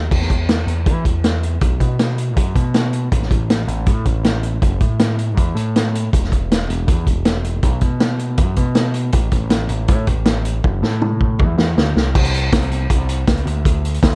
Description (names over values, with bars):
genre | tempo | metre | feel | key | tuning
indie rock | 160 BPM | 4/4 | straight | unclear | A4 = 442 Hz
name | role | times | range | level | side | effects
growling picked electric bass | bass | 0.0-14.2 s | E1 to E3 | -19 LUFS | equal | overdrive
vintage drum kit | drums | 0.1-14.2 s | crash cymbal, hi-hat, kick drum, snare drum, toms | -16 LUFS | equal | none
room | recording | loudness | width
little or no reverb | dark, warm production | -15 LUFS | side -33 dB against mid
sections
0.1-12.1 A section; 12.1-14.2 B section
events
drum fill 10.6-12.1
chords
none